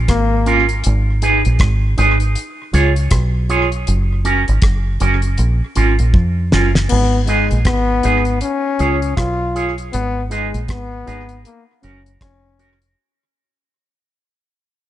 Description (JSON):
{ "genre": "roots reggae", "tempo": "79 BPM", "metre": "4/4", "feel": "swing 60% on 16ths", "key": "G# dorian", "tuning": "A4 = 439 Hz", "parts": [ { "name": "deep dub fingered electric bass", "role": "bass", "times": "0.0-12.9 s", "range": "E#1 to E#2", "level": "-16 LUFS", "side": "equal", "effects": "none" }, { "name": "warm trombone", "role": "second line", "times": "0.1-0.7, 6.9-12.8 s", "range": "G#3 to E#4", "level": "-20 LUFS", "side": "left 4 dB", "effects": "tape echo" }, { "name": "damped 70s drum kit", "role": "drums", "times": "0.1-13.0 s", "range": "crash cymbal, hi-hat, kick drum, rim click, snare drum", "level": "-19 LUFS", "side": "equal", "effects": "none" }, { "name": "electric guitar with an envelope filter", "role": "accompaniment", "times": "0.5-12.8 s", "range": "C#4 to C#5", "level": "-20 LUFS", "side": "right 4 dB", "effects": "tremolo, tape echo" } ], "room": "little or no reverb", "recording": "nothing above 10.5 kHz", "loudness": "-14 LUFS", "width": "side -13 dB against mid", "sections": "0.0-6.9 A section; 6.9-13.0 B section", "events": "drum fill 6.1-6.9; fade-out 6.9-13.0", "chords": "0.0 A#m; 0.8 G#m; 2.4 C#; 3.9 F#; 5.4 A#m; 6.9 G#m; 8.4 C#; 9.9 G#m; 11.4 F#" }